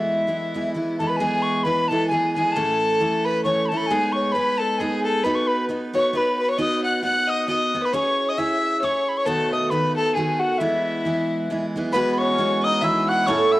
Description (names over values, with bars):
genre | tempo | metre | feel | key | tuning
celtic folk, Celtic waltz | 134 BPM | 3/4 | swing 57% on 8ths | E major | A4 = 440 Hz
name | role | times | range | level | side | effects
tin whistle | melody | 0.0-13.6 s | E5 to F#6 | -24 LUFS | left 1 dB | cassette tape
rich fiddle | second line | 0.0-13.6 s | E4 to F#5 | -24 LUFS | left 2 dB | tape echo
picked steel-string acoustic guitar | accompaniment | 0.0-13.6 s | A2 to C#5 | -24 LUFS | right 2 dB | none
cimbalom | second line | 11.9-13.6 s | B3 to F#4 | -26 LUFS | right 1 dB | none
room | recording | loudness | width
moderate spring reverb, RT60 1.6 s, small room ambience | home recording on cassette | -19 LUFS | side -17 dB against mid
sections
0.0-1.2 A section; 1.2-11.9 A section; 11.9-13.6 B section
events
none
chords
0.0 E; 2.5 A; 3.9 G#m; 5.2 B; 7.9 C#m; 9.3 B7; 10.6 E; 11.9 Eadd9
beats
0.27 0.73 | 1.18 1.63 2.08 | 2.54 2.99 3.44 | 3.89 4.34 4.79 | 5.24 5.68 6.13 | 6.58 7.03 7.48 | 7.93 8.37 8.82 | 9.27 9.71 10.16 | 10.61 11.05 11.50 | 11.94 12.39 12.83 | 13.27